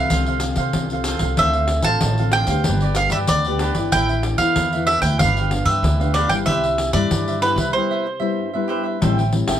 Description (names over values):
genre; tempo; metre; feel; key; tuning
samba and choro; 94 BPM; 4/4; straight; C major; A4 = 443 Hz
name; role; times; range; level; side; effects
bowl-back mandolin; melody; 0.0-8.7 s; B4 to A5; -20 LUFS; right 2 dB; none
cavaquinho; accompaniment; 0.0-9.6 s; D4 to G5; -27 LUFS; right 4 dB; none
nylon-string guitar; accompaniment; 0.0-9.6 s; G2 to A4; -26 LUFS; left 4 dB; none
upright bass; bass; 0.0-9.6 s; G1 to C3; -22 LUFS; equal; none
pandeiro; percussion; 0.1-9.6 s; none; -24 LUFS; left 2 dB; none
room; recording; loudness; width
light reverb; close, detailed microphones; -17 LUFS; side -10 dB against mid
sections
0.0-9.0 A section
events
break 7.7-9.0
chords
0.1 F/C; 1.4 Dm7; 2.7 G; 3.9 Asus2; 5.2 G7; 6.5 Cmaj7; 9.0 Am7